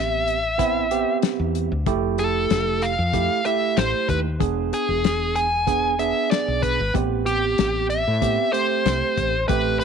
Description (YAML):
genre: straight-eighth soul blues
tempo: 94 BPM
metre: 4/4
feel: straight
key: A minor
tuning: A4 = 440 Hz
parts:
  - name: dark smooth lead guitar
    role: melody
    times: 0.0-9.8 s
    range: G4 to G#5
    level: -22 LUFS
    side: left 2 dB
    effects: overdrive, slapback echo
  - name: barky tine electric piano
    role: accompaniment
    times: 0.0-9.8 s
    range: A3 to G#4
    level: -25 LUFS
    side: right 15 dB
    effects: none
  - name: woody fretless electric bass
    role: bass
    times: 0.0-9.8 s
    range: E1 to A2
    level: -26 LUFS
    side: left 1 dB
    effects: none
  - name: warm soul drum kit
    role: drums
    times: 0.3-9.8 s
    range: hi-hat, kick drum, snare drum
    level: -24 LUFS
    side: left 9 dB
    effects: none
room: light reverb, small room ambience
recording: 1960s-style stereo with parts hard left and right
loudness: -19 LUFS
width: side -6 dB against mid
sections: 0.0-9.8 A section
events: none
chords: 0.0 Am7; 1.9 Fmaj7; 4.4 E7; 6.9 Am7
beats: 0.59 1.23 | 1.86 2.50 3.13 3.77 | 4.40 5.04 5.68 6.31 | 6.95 7.58 8.22 8.86 | 9.49